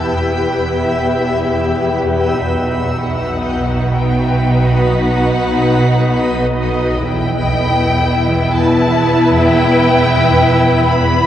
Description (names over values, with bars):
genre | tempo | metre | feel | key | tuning
cinematic, suspense film score | free time | none | none | E harmonic minor | A4 = 440 Hz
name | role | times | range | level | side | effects
warm symphonic violin section | melody | 0.0-11.3 s | D#5 to B5 | -20 LUFS | left 2 dB | none
dark symphonic violin section | second line | 0.0-11.3 s | E4 to B4 | -19 LUFS | left 1 dB | none
warm symphonic viola section | accompaniment | 0.0-11.3 s | B3 to E4 | -20 LUFS | equal | none
backwards swelling texture | sustained chords | 0.0-11.3 s | B4 to B5 | -23 LUFS | equal | built-in reverb
dark French horn section | sustained chords | 0.0-11.3 s | B3 to G4 | -21 LUFS | left 2 dB | none
warm studio cello section | bass | 0.0-11.3 s | E2 to B2 | -21 LUFS | right 2 dB | none
warm symphonic double bass section | bass | 0.0-11.3 s | E1 to B1 | -20 LUFS | right 3 dB | none
swarming drone | drone | 0.0-11.3 s | B1 to E2 | -23 LUFS | equal | built-in reverb
warm symphonic violin section | texture | 0.0-2.0 s | E6 to B6 | -30 LUFS | left 2 dB | none
room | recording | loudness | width
wet concert hall reverb, RT60 2.3 s | worn, warbling old tape, cassette tape, warbly pitch drift | -12 LUFS | side -11 dB against mid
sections
0.0-11.3 A section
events
none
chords
0.0 Em; 2.4 B; 7.0 Em